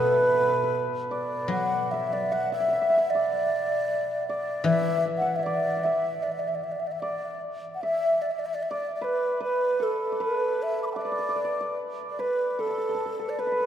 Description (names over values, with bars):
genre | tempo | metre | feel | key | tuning
chinese traditional, Chinese chamber ensemble | 76 BPM | 2/4 | rubato | D gong mode | A4 = 440 Hz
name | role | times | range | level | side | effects
mellow hollow xiao | melody | 0.0-13.7 s | A4 to D6 | -26 LUFS | equal | none
hammered dulcimer | second line | 0.0-13.7 s | A4 to F#5 | -29 LUFS | right 2 dB | none
guzheng | accompaniment | 0.0-7.0 s | B2 to F#3 | -32 LUFS | left 4 dB | none
room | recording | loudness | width
wet cathedral reverb, RT60 5.7 s | recorded in a church or concert hall | -24 LUFS | side -10 dB against mid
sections
0.0-7.8 A section; 7.8-13.7 B section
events
none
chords
none